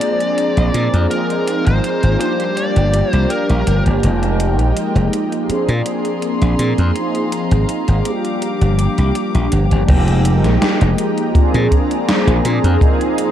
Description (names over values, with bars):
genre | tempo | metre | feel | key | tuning
vaporwave | 82 BPM | 4/4 | straight | F dorian | A4 = 442 Hz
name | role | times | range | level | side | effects
smooth overdriven lead guitar | melody | 0.0-3.8 s | Bb4 to D5 | -22 LUFS | left 1 dB | vintage 12-bit sampler grit, tape echo
mellow synth brass | accompaniment | 0.0-13.3 s | F3 to Ab4 | -18 LUFS | equal | analog chorus, dub echo
warm studio string section | sustained chords | 0.0-13.3 s | Ab3 to D6 | -28 LUFS | left 2 dB | none
gated 80s digital drum machine | drums | 0.0-13.3 s | crash cymbal, hi-hat, snare drum | -23 LUFS | equal | gated reverb, gated reverb snare, overdrive
glassy slap bass | bass | 0.6-12.8 s | F1 to Bb2 | -14 LUFS | equal | none
kick drum | drums | 9.9-13.0 s | none | -13 LUFS | equal | none
room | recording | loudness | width
light reverb, studio reverb | echo-heavy mix | -13 LUFS | side -10 dB against mid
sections
0.0-9.9 A section; 9.9-13.3 B section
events
none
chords
0.0 Bb9; 1.1 Ab69; 2.2 Gm7; 4.0 Fm11; 5.5 Bb9; 7.0 Ab69; 8.1 Gm7; 9.9 Fm11; 11.3 Bb9; 12.8 Ab69